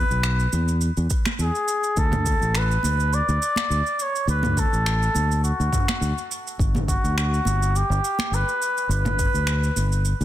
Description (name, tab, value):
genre	sunset chillout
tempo	104 BPM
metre	4/4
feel	swing 54% on 16ths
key	unclear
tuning	A4 = 441 Hz
part	trumpet with cup mute	melody	0.0-10.0 s	F#4 to D5	-25 LUFS	equal	vintage 12-bit sampler grit, tape echo
part	fingered electric bass	bass	0.0-10.2 s	G1 to E2	-22 LUFS	equal	none
part	deep house drum kit	drums	0.1-10.2 s	finger snaps, shaker, toms	-29 LUFS	right 2 dB	overdrive, soft clipping on snare
part	congas	percussion	0.5-9.9 s	none	-33 LUFS	right 2 dB	none
part	electronic kick drum	drums	1.1-9.3 s	none	-24 LUFS	equal	overdrive
room	light reverb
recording	dense, heavily limited modern master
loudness	-20 LUFS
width	side -13 dB against mid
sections	0.0-10.2 A section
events	none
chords	0.0 E; 2.0 D5; 6.6 Gmaj7